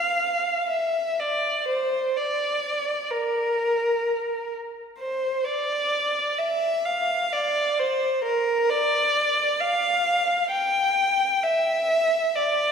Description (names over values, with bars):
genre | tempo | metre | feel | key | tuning
classical, free, expressive piece for unaccompanied violin | 65 BPM | 3/4 | rubato | unclear | A4 = 440 Hz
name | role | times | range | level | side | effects
rich violin | solo | 0.0-12.7 s | Bb4 to G5 | -21 LUFS | equal | none
room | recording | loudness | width
wet concert hall reverb, RT60 2.2 s | heard from further back in the room | -21 LUFS | side -6 dB against mid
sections
0.0-12.7 A section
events
none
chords
none